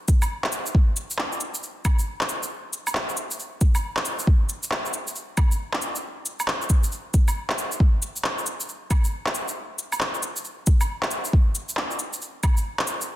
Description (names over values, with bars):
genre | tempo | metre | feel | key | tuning
future garage | 136 BPM | 4/4 | swing 62% on 16ths | none | none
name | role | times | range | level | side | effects
electronic cabasa, shaker, woodblock and handclaps | drums | 0.1-13.1 s | none | -26 LUFS | equal | overdrive
electronic kick drum | drums | 0.1-12.5 s | none | -18 LUFS | equal | overdrive
room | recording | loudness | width
little or no reverb | dense, heavily limited modern master | -22 LUFS | side -14 dB against mid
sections
0.0-13.2 A section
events
none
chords
none